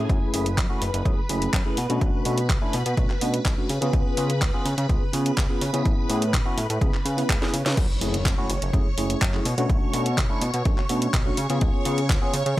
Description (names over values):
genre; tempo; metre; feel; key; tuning
filtered disco house; 125 BPM; 4/4; straight; F# minor; A4 = 439 Hz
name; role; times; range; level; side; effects
bright tine electric piano; accompaniment; 0.0-12.6 s; A3 to B4; -29 LUFS; equal; phaser, sidechain pumping, low-pass filter
phased string machine; sustained chords; 0.0-12.6 s; G#4 to C#6; -32 LUFS; equal; ensemble chorus, phaser, sidechain pumping, low-pass filter
fat analog bass; bass; 0.0-12.6 s; F#1 to C#3; -26 LUFS; equal; sidechain pumping, low-pass filter
electronic kick drum; drums; 0.1-12.6 s; none; -23 LUFS; equal; none
house drum kit; drums; 0.1-12.6 s; crash cymbal, handclaps, hi-hat, snare drum; -29 LUFS; equal; sidechain pumping on hats, sidechain pumping on cymbals
impact; sound effects; 7.8-9.7 s; none; -36 LUFS; equal; none
room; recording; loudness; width
little or no reverb; dry, gritty hardware recording; -21 LUFS; side -16 dB against mid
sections
0.0-7.8 A section; 7.8-12.6 B section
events
drum fill 7.4-7.8; drop 7.8-12.6; impact 7.8-9.7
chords
0.1 F#m7; 1.8 Bm7; 3.7 C#7; 5.9 Amaj7; 6.8 C#m7; 7.8 F#m7; 9.5 Bm7; 11.4 C#7